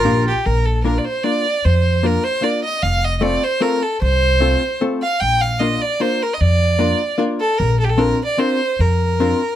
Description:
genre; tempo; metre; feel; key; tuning
musette waltz; 151 BPM; 3/4; straight; Bb major; A4 = 440 Hz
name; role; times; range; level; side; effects
rich violin; melody; 0.0-9.6 s; G4 to G5; -18 LUFS; right 1 dB; none
hollow-body jazz guitar; accompaniment; 0.0-9.4 s; A3 to Bb4; -20 LUFS; left 3 dB; none
upright bass; bass; 0.0-9.3 s; F1 to F2; -18 LUFS; equal; none
room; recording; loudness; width
light reverb; none; -15 LUFS; side -11 dB against mid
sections
0.4-9.6 A section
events
none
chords
0.4 Bb; 2.8 F; 5.2 Bb; 7.6 Bbadd9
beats
0.05 | 0.45 0.85 1.25 | 1.64 2.04 2.43 | 2.82 3.21 3.61 | 4.01 4.41 4.81 | 5.21 5.61 6.01 | 6.41 6.81 7.20 | 7.60 7.99 8.39 | 8.79 9.19

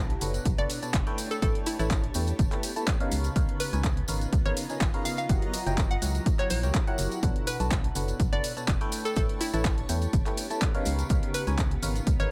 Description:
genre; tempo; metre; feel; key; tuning
piano house; 124 BPM; 4/4; swing 53% on 16ths; unclear; A4 = 439 Hz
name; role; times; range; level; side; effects
barking FM electric piano; riff; 0.0-12.3 s; B2 to A5; -37 LUFS; equal; phaser, sidechain pumping, digital delay
organ-like FM bass; bass; 0.0-12.3 s; F#1 to E2; -32 LUFS; equal; sidechain pumping
granular cloud pad; texture; 0.1-12.3 s; B3 to A#5; -42 LUFS; equal; built-in reverb, sidechain pumping
punchy analog drum machine; drums; 0.1-12.3 s; handclaps, hi-hat, shaker; -37 LUFS; equal; none
tambourine; percussion; 0.2-12.2 s; none; -44 LUFS; equal; none
electronic kick drum; drums; 0.5-12.2 s; none; -30 LUFS; equal; none
hollow square pluck; melody; 0.6-12.3 s; E4 to F#5; -35 LUFS; equal; chorus, digital delay
room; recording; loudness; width
little or no reverb; none; -28 LUFS; mono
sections
0.0-12.3 A section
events
none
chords
0.0 Bm9; 1.2 A9; 3.1 C#13; 5.3 F#7b9; 7.2 Bm9; 8.9 A9; 10.9 C#13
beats
0.46 0.94 | 1.42 1.91 2.39 2.87 | 3.36 3.84 4.33 4.81 | 5.29 5.78 6.26 6.75 | 7.23 7.71 8.20 8.68 | 9.16 9.65 10.13 10.62 | 11.10 11.58 12.07

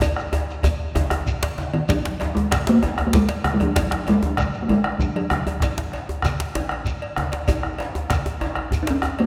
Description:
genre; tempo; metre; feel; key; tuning
west african traditional, West African drum ensemble; 129 BPM (dotted quarters); 12/8; straight; F# major pentatonic; A4 = 439 Hz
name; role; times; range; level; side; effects
bombo; percussion; 0.0-9.2 s; none; -29 LUFS; equal; none
congas; percussion; 0.0-8.9 s; none; -33 LUFS; equal; none
cowbell; percussion; 0.0-9.3 s; none; -34 LUFS; equal; none
djembe; percussion; 0.0-9.3 s; none; -34 LUFS; equal; none
djembe; percussion; 0.0-9.2 s; none; -29 LUFS; equal; none
shekere; percussion; 0.0-9.1 s; none; -35 LUFS; equal; none
talking drum; melody; 1.7-5.5, 8.8-9.3 s; D#3 to D#4; -24 LUFS; equal; none
room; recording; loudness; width
wet concert hall reverb, RT60 2.0 s; none; -22 LUFS; mono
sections
0.0-1.9 A section; 1.9-9.3 B section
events
drum fill 0.0-1.9, 8.6-9.3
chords
none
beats
| 0.01 0.48 0.95 1.42 | 1.88 2.35 2.82 3.29 | 3.75 4.22 4.68 5.15 | 5.62 6.08 6.55 7.01 | 7.48 7.95 8.41 8.87

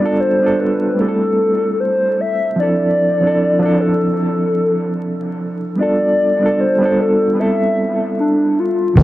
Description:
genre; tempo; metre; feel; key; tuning
lo-fi hip hop; 75 BPM; 4/4; swing 62% on 16ths; D dorian; A4 = 443 Hz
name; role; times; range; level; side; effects
warbly nostalgic lead; melody; 0.0-9.0 s; D4 to E5; -16 LUFS; left 1 dB; chorus, low-pass filter, dub echo
reed electric piano; accompaniment; 0.0-9.0 s; F3 to A4; -17 LUFS; right 2 dB; overdrive, fast tremolo, cassette tape, low-pass filter, dub echo
vintage muted fingered electric bass; bass; 9.0 s; D2; -8 LUFS; equal; none
boom bap sampler-style drum kit; drums; 9.0 s; hi-hat, kick drum; -10 LUFS; equal; overdrive, vintage 12-bit sampler grit
room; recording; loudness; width
wet spring reverb, RT60 2.2 s; echo-heavy mix, vinyl crackle; -14 LUFS; side -15 dB against mid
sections
0.0-9.0 A section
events
none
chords
0.0 G9; 1.0 Am7; 2.6 Dm7; 5.8 G9; 7.4 Am9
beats
0.17 0.97 1.77 | 2.57 3.37 4.17 4.97 | 5.77 6.57 7.37 8.17 | 8.97

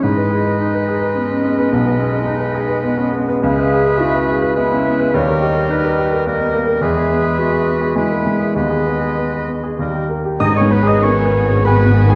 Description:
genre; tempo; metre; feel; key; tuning
classical, romantic movement for piano and orchestra; 95-111 BPM; 3/4; rubato; G# minor from 3.4 s; A4 = 436 Hz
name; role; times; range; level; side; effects
clear grand piano; melody; 0.0-12.2 s; B1 to D#6; -19 LUFS; equal; none
bright flute section; second line; 0.0-10.7 s; D#5 to G#5; -30 LUFS; equal; none
clear oboe; second line; 0.0-12.2 s; G#4 to D#5; -27 LUFS; equal; none
warm clarinet; second line; 0.0-12.2 s; B3 to D#5; -25 LUFS; equal; none
clear bassoon; accompaniment; 0.0-10.6 s; G3 to D#4; -28 LUFS; equal; none
muted studio violin section; melody; 10.4-12.2 s; G#4 to B4; -34 LUFS; equal; none
muted studio violin section; second line; 10.4-12.2 s; B3 to F#4; -31 LUFS; equal; none
muted studio viola section; accompaniment; 10.4-12.2 s; G#3 to D#4; -27 LUFS; equal; none
dark French horn section; sustained chords; 10.4-12.2 s; G#4 to B4; -27 LUFS; equal; none
mellow tuba; bass; 10.4-12.2 s; G#1; -24 LUFS; equal; none
muted studio cello section; bass; 10.4-12.2 s; G#2; -20 LUFS; equal; none
muted studio double bass section; bass; 10.4-12.2 s; G#1; -22 LUFS; equal; none
room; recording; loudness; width
wet scoring stage reverb, RT60 1.7 s; dark, warm production; -16 LUFS; mono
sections
0.0-10.4 A section; 10.4-12.2 B section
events
none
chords
0.0 G#m; 5.2 D#7; 6.8 E; 9.8 D#; 10.4 G#m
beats
| 0.03 0.60 1.16 | 1.72 2.27 2.83 | 3.43 4.00 4.57 | 5.15 5.71 6.28 | 6.82 7.38 7.96 | 8.56 9.18 9.80 | 10.40 11.04 11.65

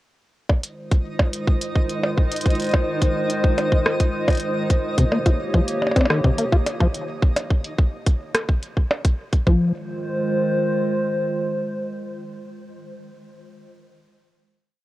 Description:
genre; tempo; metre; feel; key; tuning
IDM; 107 BPM; 4/4; straight; F minor; A4 = 439 Hz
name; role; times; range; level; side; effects
warbly tape-like pad; sustained chords; 0.8-12.5 s; Eb3 to Db5; -25 LUFS; equal; chorus, built-in reverb
electronic kick drum; drums; 0.5-9.6 s; none; -18 LUFS; equal; none
glitchy drum kit; drums; 0.5-9.4 s; hi-hat, percussion blips, rim click; -24 LUFS; equal; none
twinkling granular texture; texture; 1.1-7.2 s; Eb4 to Eb5; -31 LUFS; equal; built-in reverb
deep acid bass; arpeggios; 5.0-9.7 s; C3 to F4; -24 LUFS; left 2 dB; digital delay
room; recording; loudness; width
light reverb; worn, warbling old tape, cassette tape, warbly pitch drift; -19 LUFS; side -17 dB against mid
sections
0.5-9.5 groove; 9.5-11.7 final chord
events
none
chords
0.5 Fm7; 5.0 Eb7; 7.2 N.C.; 9.5 Fm7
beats
| 0.49 1.05 1.62 2.18 | 2.74 3.30 3.86 4.42 | 4.98 5.54 6.10 6.66 | 7.22 7.78 8.35 8.90 | 9.47 10.03 10.59 11.15

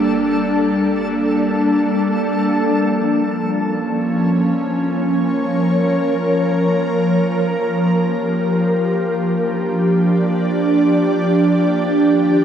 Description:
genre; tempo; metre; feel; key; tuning
ambient; free time; none; none; unclear; A4 = 440 Hz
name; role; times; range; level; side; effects
ethereal airy pad; sustained chords; 0.0-12.4 s; Eb3 to D5; -15 LUFS; equal; ensemble chorus, built-in reverb
deep rumbling drone; bass; 0.0-2.4 s; G1; -46 LUFS; equal; built-in reverb
backwards swelling texture; texture; 0.0-2.5 s; A4 to A5; -27 LUFS; equal; built-in reverb
room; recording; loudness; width
wet cathedral reverb, RT60 7.2 s; in a vast, echoing space; -15 LUFS; side -8 dB against mid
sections
0.0-2.5 A section; 2.5-12.4 B section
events
none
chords
0.0 Gmadd9; 2.5 Bbm; 7.3 Gm7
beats
free time

